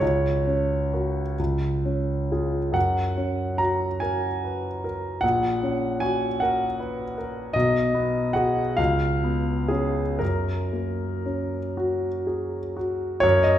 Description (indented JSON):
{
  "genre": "classical, romantic nocturne for solo piano",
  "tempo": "38-53 BPM (dotted quarters)",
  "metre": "6/8",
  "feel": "rubato",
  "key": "F# major",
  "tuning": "A4 = 440 Hz",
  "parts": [
    { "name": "warm concert grand piano", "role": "solo", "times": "0.0-13.6 s", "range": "A#1 to A#5", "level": "-22 LUFS", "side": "equal", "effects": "none" }
  ],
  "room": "wet recital hall reverb, RT60 1.5 s",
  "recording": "recorded in a church or concert hall",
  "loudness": "-22 LUFS",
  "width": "side -11 dB against mid",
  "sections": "0.0-13.2 A section",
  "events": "none",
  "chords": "0.0 F#/C#; 1.4 C#; 2.8 F#; 5.2 F#/A#; 7.5 G#m7/B; 8.8 C#7; 10.2 F#",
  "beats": "| 0.01 1.39 | 2.75 4.02 | 5.23 6.41 | 7.55 8.78 | 10.21 11.77 | 13.24"
}